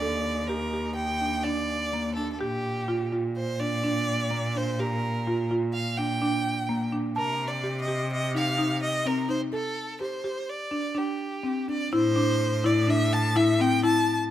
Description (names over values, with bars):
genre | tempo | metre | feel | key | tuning
contemporary instrumental, chamber music in an uneven meter | 126 BPM | 5/4 | straight | unclear | A4 = 440 Hz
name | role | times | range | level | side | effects
clear violin | melody | 0.0-14.2 s | G4 to A5 | -29 LUFS | right 1 dB | none
buzzing marimba with medium mallets | arpeggios | 0.0-14.2 s | Bb3 to A5 | -28 LUFS | left 1 dB | none
rich cello | bass | 0.0-14.3 s | Eb2 to C3 | -30 LUFS | equal | none
room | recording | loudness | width
light reverb | close, detailed microphones | -24 LUFS | side -12 dB against mid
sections
0.0-11.9 A section; 11.9-14.3 B section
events
break 9.5-11.9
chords
0.0 Ebmaj7; 2.4 Bb; 7.2 Cm; 9.5 Gsus2; 11.9 Am